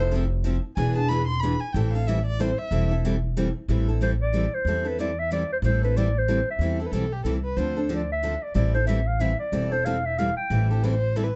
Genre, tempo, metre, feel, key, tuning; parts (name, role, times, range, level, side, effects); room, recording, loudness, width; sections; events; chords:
acoustic string swing (jazz manouche); 185 BPM; 3/4; swing 59% on 8ths; A minor; A4 = 440 Hz
warm violin; second line; 0.0-2.9, 6.8-7.8, 10.7-11.4 s; G4 to C6; -32 LUFS; equal
picked steel-string acoustic guitar; accompaniment; 0.0-11.3 s; D3 to A4; -33 LUFS; equal
upright bass; bass; 0.0-11.3 s; E1 to E2; -27 LUFS; equal
picked steel-string acoustic guitar; accompaniment; 0.1-11.3 s; D3 to B4; -36 LUFS; equal
breathy clarinet; melody; 4.0-10.7 s; B4 to G5; -29 LUFS; equal; plate reverb
light reverb; dark, warm production, nothing above 8.0 kHz; -25 LUFS; mono
0.0-3.7 A section; 3.7-11.4 B section
violin solo 0.0-3.7
0.0 Fmaj7; 0.8 E7; 1.7 Am7; 7.6 Dm9; 8.6 Am7